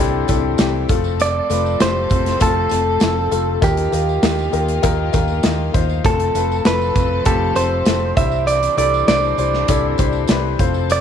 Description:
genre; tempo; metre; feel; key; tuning
piano-driven pop; 99 BPM; 4/4; straight; unclear; A4 = 440 Hz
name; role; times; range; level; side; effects
direct-recorded clean electric guitar; melody; 0.0-11.0 s; G4 to E5; -20 LUFS; right 4 dB; spring reverb
warm upright piano; accompaniment; 0.0-11.0 s; C3 to C5; -21 LUFS; left 12 dB; none
rich studio string section; sustained chords; 0.0-11.0 s; Eb3 to A4; -30 LUFS; left 1 dB; none
vintage muted fingered electric bass; bass; 0.0-11.0 s; F1 to Eb2; -22 LUFS; right 1 dB; none
modern studio drum kit; drums; 0.3-11.0 s; hi-hat, kick drum, snare drum; -20 LUFS; right 1 dB; none
tambourine; percussion; 0.3-11.0 s; none; -37 LUFS; right 17 dB; none
room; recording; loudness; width
little or no reverb; 1960s-style stereo with parts hard left and right; -15 LUFS; side -8 dB against mid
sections
0.0-11.0 A section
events
none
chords
0.0 Cadd9; 0.9 F; 3.6 Ebsus2; 6.0 F; 8.2 Cadd9

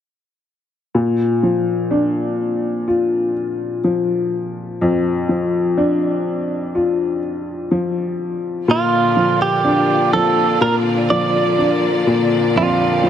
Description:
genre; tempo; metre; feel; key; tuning
pop; 62 BPM; 4/4; straight; Bb major; A4 = 441 Hz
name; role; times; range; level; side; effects
clear upright piano; accompaniment; 0.9-13.1 s; F2 to F4; -17 LUFS; left 2 dB; none
direct-recorded clean electric guitar; melody; 8.7-13.1 s; F4 to D5; -17 LUFS; right 4 dB; digital delay
bright studio string section; sustained chords; 8.7-13.1 s; D3 to D5; -23 LUFS; right 2 dB; none
room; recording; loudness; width
light reverb; none; -15 LUFS; side -9 dB against mid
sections
0.9-8.7 A section; 8.7-13.1 B section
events
none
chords
0.9 Bb

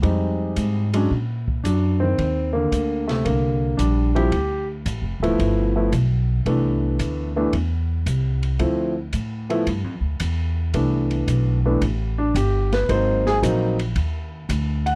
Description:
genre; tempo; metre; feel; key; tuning
jazz piano trio; 112 BPM; 4/4; swing 69% on 8ths; unclear; A4 = 440 Hz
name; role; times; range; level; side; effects
warm grand piano; melody; 0.0-15.0 s; C3 to Gb5; -24 LUFS; equal; none
upright bass; bass; 0.0-15.0 s; D1 to A#2; -24 LUFS; equal; none
open jazz drum kit; drums; 0.0-14.9 s; hi-hat, kick drum, ride cymbal, snare drum; -35 LUFS; equal; none
room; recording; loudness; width
little or no reverb; dry, close 1970s-style studio recording; -22 LUFS; mono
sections
0.0-10.7 A section; 10.7-15.0 B section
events
grand piano solo 10.7-15.0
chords
0.0 Fm7; 1.1 F#aug; 2.2 Ebmaj7; 4.3 Dm; 5.4 G13; 6.5 Cmaj13; 8.6 Dm7; 9.7 G5; 10.7 Cmaj13; 12.9 Ab9

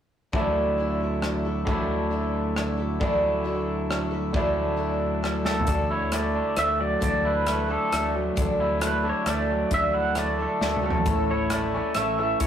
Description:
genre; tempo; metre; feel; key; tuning
folk rock and heartland rock; 134 BPM; 3/4; straight; D major; A4 = 440 Hz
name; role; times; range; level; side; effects
picked twelve-string acoustic guitar; accompaniment; 0.3-12.5 s; A2 to C#5; -30 LUFS; equal; none
electric guitar through a small old amp; riff; 0.3-12.5 s; A2 to E4; -27 LUFS; equal; none
picked electric bass; bass; 0.3-12.5 s; A1 to D2; -32 LUFS; left 1 dB; none
natural country drum kit; drums; 0.3-12.5 s; hi-hat, kick drum, rim click, snare drum, toms; -29 LUFS; equal; none
pedal steel guitar; melody; 5.5-12.5 s; A4 to F#5; -27 LUFS; right 1 dB; none
room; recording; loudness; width
moderate stone room reverb, RT60 1.0 s; rough rehearsal-room recording, tube saturation; -22 LUFS; side -9 dB against mid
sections
0.3-5.7 A section; 5.7-12.5 B section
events
drum fill 5.5, 10.6-11.1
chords
0.3 Dadd9; 11.1 A

